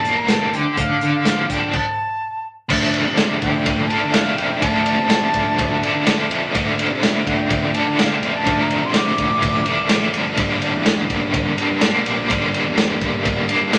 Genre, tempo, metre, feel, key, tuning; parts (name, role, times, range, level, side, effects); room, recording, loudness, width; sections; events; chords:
psychedelic rock; 125 BPM; 4/4; straight; A4 = 441 Hz
breathy bright concert flute; melody; 0.0-10.2 s; F5 to D6; -26 LUFS; equal
overdriven electric guitar; riff; 0.0-13.8 s; G2 to A4; -22 LUFS; equal; tremolo
fuzz picked electric bass; bass; 0.0-13.8 s; E1 to D3; -28 LUFS; equal; overdrive
crunchy breakbeat drum kit; drums; 0.0-13.8 s; crash cymbal, hi-hat, kick drum, ride cymbal, snare drum; -23 LUFS; equal
wet small room reverb, RT60 0.6 s; lossy compression artefacts; -19 LUFS; mono
0.0-2.7 A section; 2.7-13.8 B section
stop 1.7-2.7
0.0 Gmadd9; 0.5 Dm; 1.7 N.C.; 2.7 Dm7; 10.4 Gm